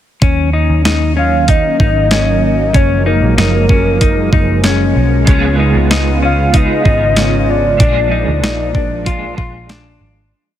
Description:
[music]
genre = dream pop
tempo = 95 BPM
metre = 4/4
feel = straight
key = unclear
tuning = A4 = 441 Hz
[part]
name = warm analog pad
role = sustained chords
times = 0.2-10.3 s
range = C#3 to E#4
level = -19 LUFS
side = right 3 dB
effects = chorus
[part]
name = semi-hollow electric guitar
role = arpeggios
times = 0.2-10.3 s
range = C#4 to E#4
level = -18 LUFS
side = left 6 dB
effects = wide subtle chorus, tape echo
[part]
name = vintage muted picked electric bass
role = bass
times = 0.2-10.3 s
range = F#1 to D#2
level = -15 LUFS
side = equal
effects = none
[part]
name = crisp 8-bit digital drum machine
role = drums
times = 0.2-9.8 s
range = hi-hat, kick drum, snare drum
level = -14 LUFS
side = equal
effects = overdrive
[part]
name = soft octave-layered synth lead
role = melody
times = 1.2-9.7 s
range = A#4 to E#5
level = -17 LUFS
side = left 1 dB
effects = chorus, phaser, tape echo
[part]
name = clean electric guitar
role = accompaniment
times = 5.2-10.6 s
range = A#2 to G#4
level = -21 LUFS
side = right 5 dB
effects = tremolo, ensemble chorus
[sound]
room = light reverb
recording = dense, heavily limited modern master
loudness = -10 LUFS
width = side -11 dB against mid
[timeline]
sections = 0.2-10.3 verse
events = fade-out 7.8-10.3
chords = 0.2 D#m7; 2.7 F#maj9; 5.3 C#7; 7.8 A#7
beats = | 0.22 0.85 1.49 2.12 | 2.75 3.38 4.01 4.64 | 5.28 5.91 6.54 7.17 | 7.80 8.43 9.06 9.70

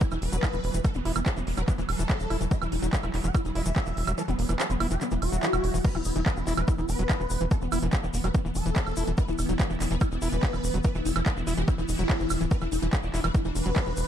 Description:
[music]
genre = psychedelic trance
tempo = 144 BPM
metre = 4/4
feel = straight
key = unclear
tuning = A4 = 441 Hz
[part]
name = swarming rave lead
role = melody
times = 0.0-14.1 s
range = B3 to F#5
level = -33 LUFS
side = left 1 dB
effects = chorus, phaser, sidechain pumping, tape echo
[part]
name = pulsing gated texture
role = sustained chords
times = 0.0-14.1 s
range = E3 to D4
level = -36 LUFS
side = equal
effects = chorus, built-in reverb, sidechain pumping
[part]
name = overdriven acid bass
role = riff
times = 0.0-13.9 s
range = D3 to E4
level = -35 LUFS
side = moving between left 6 dB and right 4 dB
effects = auto-pan, sidechain pumping, ping-pong delay
[part]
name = electronic kick drum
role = drums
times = 0.0-13.8 s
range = none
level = -25 LUFS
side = equal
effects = none
[part]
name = techno drum kit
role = drums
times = 0.0-14.1 s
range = crash cymbal, handclaps, hi-hat, woodblock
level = -34 LUFS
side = right 3 dB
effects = none
[part]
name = egg shaker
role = percussion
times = 0.0-14.1 s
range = none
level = -42 LUFS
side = left 6 dB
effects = none
[part]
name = tight sequencer bass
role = bass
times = 0.1-14.0 s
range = D1 to F#1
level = -29 LUFS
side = equal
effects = tube saturation
[part]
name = swell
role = sound effects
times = 5.2-5.8 s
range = none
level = -36 LUFS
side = equal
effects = none
[sound]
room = digital ambience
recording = dark, warm production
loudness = -24 LUFS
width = side -10 dB against mid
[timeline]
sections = 0.0-5.8 A section; 5.8-14.1 B section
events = filter sweep on acid bass 0.0-5.8; kick drops out 4.2-5.8; swell 5.2-5.8; drop 5.8-14.1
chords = 0.0 E5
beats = 0.01 0.43 | 0.84 1.26 1.68 2.10 | 2.51 2.93 3.35 3.76 | 4.18 4.59 5.01 5.43 | 5.84 6.26 6.68 7.09 | 7.51 7.93 8.35 8.76 | 9.18 9.60 10.01 10.43 | 10.85 11.26 11.68 12.10 | 12.51 12.93 13.35 13.76

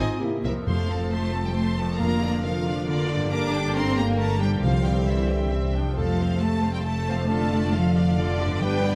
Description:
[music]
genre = cinematic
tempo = 136 BPM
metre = 3/4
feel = straight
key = F major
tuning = A4 = 444 Hz
[part]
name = rich studio violin section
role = melody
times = 0.0-8.9 s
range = D5 to C6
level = -39 LUFS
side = equal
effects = none
[part]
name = rich chamber violin section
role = second line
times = 0.0-8.9 s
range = Bb4 to D6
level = -36 LUFS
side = equal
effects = none
[part]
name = warm clarinet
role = second line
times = 0.0-0.6 s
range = F4 to G4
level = -36 LUFS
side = equal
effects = none
[part]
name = rich symphonic viola section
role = accompaniment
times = 0.0-8.9 s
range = G3 to E5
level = -34 LUFS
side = equal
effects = none
[part]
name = concert harp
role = arpeggios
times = 0.0-8.9 s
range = F2 to D5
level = -36 LUFS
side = equal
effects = none
[part]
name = dark symphonic cello section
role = bass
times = 0.0-8.9 s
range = D3 to D4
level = -29 LUFS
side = equal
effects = none
[part]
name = dark symphonic double bass section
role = bass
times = 0.0-8.9 s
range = F1 to C2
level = -30 LUFS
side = equal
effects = none
[part]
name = dark trombone section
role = sustained chords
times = 0.7-8.9 s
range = C3 to B3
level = -33 LUFS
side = equal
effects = none
[part]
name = timpani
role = percussion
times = 0.7-6.6 s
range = F2 to C3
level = -32 LUFS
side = equal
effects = none
[sound]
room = wet scoring stage reverb, RT60 1.6 s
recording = none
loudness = -24 LUFS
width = mono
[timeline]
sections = 0.7-8.9 A section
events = none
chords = 0.2 C7; 0.7 F; 2.0 Bb/F; 3.3 Gm; 4.6 Csus4; 5.1 C; 6.0 F; 7.3 Dm/F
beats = 0.21 | 0.66 1.11 1.55 | 2.00 2.44 2.88 | 3.31 3.75 4.19 | 4.63 5.08 5.52 | 5.98 6.42 6.87 | 7.31 7.75 8.18 | 8.62

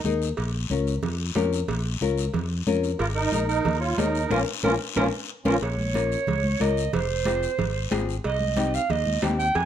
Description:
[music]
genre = latin, cumbia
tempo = 183 BPM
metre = 4/4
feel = straight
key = Bb dorian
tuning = A4 = 438 Hz
[part]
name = musette accordion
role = melody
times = 0.0, 3.0-5.6 s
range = Bb3 to F4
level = -27 LUFS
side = right 3 dB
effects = none
[part]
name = clear clarinet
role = second line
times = 0.0, 3.0-9.7 s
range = Bb4 to Ab5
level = -28 LUFS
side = right 5 dB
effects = none
[part]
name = nylon-string guitar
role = accompaniment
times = 0.0-9.5 s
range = C4 to Db5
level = -28 LUFS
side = left 7 dB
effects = none
[part]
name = congas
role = percussion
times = 0.0-9.7 s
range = none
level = -32 LUFS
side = right 2 dB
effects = none
[part]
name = fingered electric bass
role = bass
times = 0.1-9.7 s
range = F1 to F2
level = -28 LUFS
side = equal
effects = none
[part]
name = guiro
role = percussion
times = 0.1-9.7 s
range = none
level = -38 LUFS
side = left 9 dB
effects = none
[part]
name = cowbell and timbales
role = percussion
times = 0.4-9.7 s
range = none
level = -33 LUFS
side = right 4 dB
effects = none
[sound]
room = moderate studio reverb, RT60 0.8 s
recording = none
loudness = -22 LUFS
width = side -10 dB against mid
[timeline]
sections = 0.0-5.6 A section; 5.6-9.7 B section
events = band accent 4.3-5.6; clarinet solo 5.6-9.7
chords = 0.4 Bbm; 3.0 Absus2; 4.3 Bbm; 6.9 Fm; 8.2 Cm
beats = 0.05 | 0.38 0.70 1.03 1.36 | 1.69 2.02 2.34 2.67 | 3.00 3.33 3.66 3.98 | 4.31 4.64 4.97 5.29 | 5.62 5.95 6.28 6.61 | 6.93 7.26 7.59 7.92 | 8.24 8.57 8.90 9.23 | 9.56

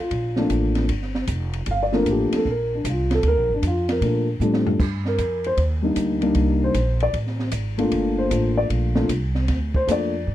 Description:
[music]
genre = jazz piano trio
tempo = 153 BPM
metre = 4/4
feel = swing 66% on 8ths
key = G minor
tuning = A4 = 440 Hz
[part]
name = dark upright piano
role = melody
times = 0.0-10.3 s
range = F3 to F5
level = -21 LUFS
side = left 1 dB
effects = none
[part]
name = upright bass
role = bass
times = 0.1-10.3 s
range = F1 to Bb2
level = -24 LUFS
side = right 1 dB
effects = none
[part]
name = open jazz drum kit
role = drums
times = 0.1-10.0 s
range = crash cymbal, hi-hat, kick drum, ride cymbal, snare drum, toms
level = -29 LUFS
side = equal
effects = none
[sound]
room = little or no reverb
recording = dry, close 1970s-style studio recording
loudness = -19 LUFS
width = side -13 dB against mid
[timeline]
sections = 0.0-10.3 A section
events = upright piano solo 0.0-10.3; drum fill 4.4-4.8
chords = 0.0 Gm7; 4.8 Cm7; 7.9 Gm7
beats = | 0.12 0.51 0.89 1.28 | 1.67 2.06 2.46 2.85 | 3.23 3.63 4.02 4.41 | 4.80 5.19 5.58 5.97 | 6.36 6.75 7.15 7.54 | 7.93 8.32 8.71 9.10 | 9.49 9.89 10.28

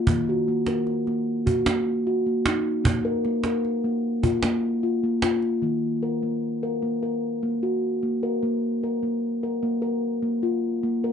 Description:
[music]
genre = world meditative, meditative tuned percussion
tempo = 151 BPM (eighths)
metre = 7/8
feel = straight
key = Eb hirajoshi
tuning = A4 = 440 Hz
[part]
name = steel tongue drum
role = arpeggios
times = 0.0-11.1 s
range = Eb3 to Bb4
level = -23 LUFS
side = left 1 dB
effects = none
[part]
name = cajon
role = percussion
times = 0.1-5.5 s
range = none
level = -25 LUFS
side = right 2 dB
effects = none
[sound]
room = moderate studio reverb, RT60 0.6 s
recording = nothing above 10.7 kHz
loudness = -22 LUFS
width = side -7 dB against mid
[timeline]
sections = 0.0-5.6 A section; 5.6-11.1 B section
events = none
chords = 0.1 Ebm; 2.8 Bb5; 5.6 Ebm; 8.4 Bb5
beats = | 0.07 0.46 0.86 1.26 1.66 2.05 2.45 | 2.85 3.24 3.64 4.04 4.44 4.83 5.23 | 5.63 6.03 6.43 6.83 7.23 7.62 8.02 | 8.42 8.82 9.22 9.62 10.02 10.42 10.82

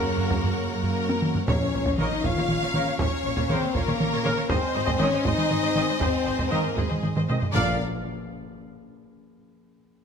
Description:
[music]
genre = cinematic, epic orchestral film score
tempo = 79 BPM (dotted quarters)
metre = 6/8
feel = straight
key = Bb minor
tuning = A4 = 439 Hz
[part]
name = clear symphonic violin section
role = melody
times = 0.0-7.8 s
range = Ab4 to F5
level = -35 LUFS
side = left 4 dB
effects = none
[part]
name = warm symphonic violin section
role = second line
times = 0.0-7.8 s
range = Ab4 to F5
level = -32 LUFS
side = left 2 dB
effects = none
[part]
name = rich symphonic viola section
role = accompaniment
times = 0.0-7.8 s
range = D4 to Eb5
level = -34 LUFS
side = left 1 dB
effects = none
[part]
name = clear trombone section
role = sustained chords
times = 0.0-7.8 s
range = Bb2 to C4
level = -36 LUFS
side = right 4 dB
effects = none
[part]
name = mellow French horn section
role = sustained chords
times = 0.0-7.8 s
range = D3 to F4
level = -29 LUFS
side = left 4 dB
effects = none
[part]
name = rich symphonic string section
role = sustained chords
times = 0.0-7.8 s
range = C4 to Ab5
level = -34 LUFS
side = left 2 dB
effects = none
[part]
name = dark trumpet section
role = stabs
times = 0.0-7.8 s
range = Bb4 to F5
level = -35 LUFS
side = equal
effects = none
[part]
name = rich symphonic double bass section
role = bass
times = 0.0-7.8 s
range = Ab1 to Gb2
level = -32 LUFS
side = right 5 dB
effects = none
[part]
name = warm symphonic cello section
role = bass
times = 0.0-7.8 s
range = Ab2 to Bb3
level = -34 LUFS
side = right 6 dB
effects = none
[part]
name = solo taiko drums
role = drums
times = 0.2-7.7 s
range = none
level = -28 LUFS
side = equal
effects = none
[part]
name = timpani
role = percussion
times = 1.5-2.2, 7.6-7.8 s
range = Bb2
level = -33 LUFS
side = left 2 dB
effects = none
[part]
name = sub drop and impact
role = sound effects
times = 1.6-3.0, 7.7-9.1 s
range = none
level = -38 LUFS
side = equal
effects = none
[sound]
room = light reverb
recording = close, detailed microphones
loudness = -22 LUFS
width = side -6 dB against mid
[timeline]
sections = 0.0-1.5 A section; 1.5-7.5 B section; 7.5-9.1 C section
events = drum fill 1.1-1.5, 7.2-7.5; impact 1.5-3.0, 7.5-9.1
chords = 0.0 Gb; 1.5 Bbm; 4.5 Ab; 7.5 Bb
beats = 0.70 | 1.47 2.24 | 2.99 3.75 | 4.50 5.25 | 6.00 6.77 | 7.54 8.30

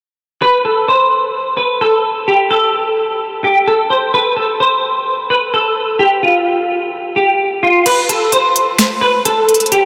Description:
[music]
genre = hip hop, trap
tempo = 129 BPM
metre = 4/4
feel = half-time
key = A minor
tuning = A4 = 441 Hz
[part]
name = semi-hollow electric guitar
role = melody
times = 0.4-9.9 s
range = F4 to C5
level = -14 LUFS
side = equal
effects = ensemble chorus, low-pass filter, tape echo
[part]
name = trap drum kit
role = drums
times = 7.9-9.8 s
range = crash cymbal, finger snaps, hi-hat, snare drum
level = -19 LUFS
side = equal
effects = none
[sound]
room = wet huge ambient reverb, RT60 4.6 s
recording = dreamy mix soaked in reverb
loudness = -14 LUFS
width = mono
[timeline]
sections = 0.4-7.9 A section; 7.9-9.9 B section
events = kick muted 7.9-9.9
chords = none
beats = | 0.42 0.88 1.35 1.81 | 2.28 2.74 3.21 3.67 | 4.14 4.60 5.07 5.53 | 6.00 6.46 6.93 7.39 | 7.86 8.32 8.79 9.25 | 9.72

